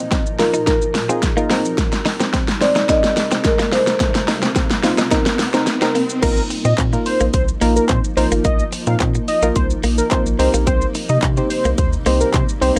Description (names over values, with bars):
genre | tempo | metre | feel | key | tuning
dance-pop | 108 BPM | 4/4 | straight | unclear | A4 = 439 Hz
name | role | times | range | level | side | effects
marimba with medium mallets | melody | 0.0-5.4 s | Bb4 to Eb5 | -22 LUFS | equal | low-pass filter, tape echo
shimmering ambient pad | sustained chords | 0.0-12.8 s | Bb2 to Bb4 | -32 LUFS | equal | chorus, built-in reverb, sidechain pumping, low-pass filter
direct-recorded clean electric guitar | riff | 0.0-12.8 s | Bb3 to Eb4 | -26 LUFS | equal | subtle chorus, low-pass filter
riser | sound effects | 0.3-6.2 s | none | -32 LUFS | equal | none
pop drum kit | drums | 0.1-12.8 s | crash cymbal, handclaps, hi-hat, kick drum, shaker, snare drum | -22 LUFS | equal | none
soft round pluck | accompaniment | 0.4-12.8 s | Bb3 to C5 | -24 LUFS | equal | chorus, sidechain pumping, low-pass filter
unison lead | melody | 6.2-12.7 s | Bb4 to F5 | -23 LUFS | equal | sidechain pumping
round analog bass | bass | 6.2-12.8 s | Ab1 to C3 | -22 LUFS | equal | sidechain pumping
room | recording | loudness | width
light reverb | none | -17 LUFS | mono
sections
0.0-6.2 A section; 6.2-12.8 B section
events
build-up 0.0-6.2; drum fill 0.0-6.2; drop 6.2-12.8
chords
0.0 Bbsus4; 1.5 Cm7; 6.2 Bbsus4; 10.4 Cm7